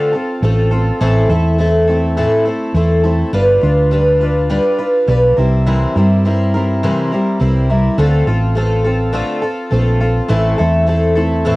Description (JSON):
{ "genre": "folk rock and heartland rock", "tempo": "103 BPM", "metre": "4/4", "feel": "straight", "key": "D minor", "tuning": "A4 = 440 Hz", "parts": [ { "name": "picked twelve-string acoustic guitar", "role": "accompaniment", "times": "0.0-11.6 s", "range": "A2 to B4", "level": "-14 LUFS", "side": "equal", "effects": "cassette tape" }, { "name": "hollow-body short-scale fingered electric bass", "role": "bass", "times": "0.4-11.5 s", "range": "G1 to G2", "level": "-14 LUFS", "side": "equal", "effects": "none" } ], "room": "light reverb", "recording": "home recording on cassette", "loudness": "-12 LUFS", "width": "side -21 dB against mid", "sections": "0.0-11.6 A section", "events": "none", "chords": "0.0 Dm7; 1.0 Am; 3.3 G7; 5.4 C7; 8.0 Dm7; 10.3 Am" }